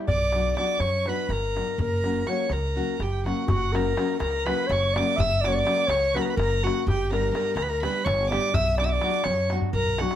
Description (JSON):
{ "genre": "balkan folk, Balkan wedding band", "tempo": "249 BPM (eighths)", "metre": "7/8", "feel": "straight", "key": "F# phrygian dominant", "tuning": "A4 = 440 Hz", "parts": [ { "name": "nylon-string guitar", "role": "accompaniment", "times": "0.0-10.2 s", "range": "F#3 to G4", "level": "-29 LUFS", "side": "left 2 dB", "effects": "none" }, { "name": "mellow clarinet", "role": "melody", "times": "0.1-10.2 s", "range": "F#4 to E5", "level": "-26 LUFS", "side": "left 1 dB", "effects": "none" }, { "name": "warm violin", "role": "second line", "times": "0.1-10.2 s", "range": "F#5 to E6", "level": "-30 LUFS", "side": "right 5 dB", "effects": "none" }, { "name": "upright bass", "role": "bass", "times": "0.1-10.0 s", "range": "F#1 to F#2", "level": "-28 LUFS", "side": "right 1 dB", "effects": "none" }, { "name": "darbuka", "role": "percussion", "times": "0.1-10.2 s", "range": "none", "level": "-31 LUFS", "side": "equal", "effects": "none" } ], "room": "light reverb", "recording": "none", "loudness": "-22 LUFS", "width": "side -10 dB against mid", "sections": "0.0-3.5 A section; 3.5-10.2 B section", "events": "drum fill 9.6-10.2", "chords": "0.1 Bm; 1.8 F#; 6.9 G; 8.5 Bm" }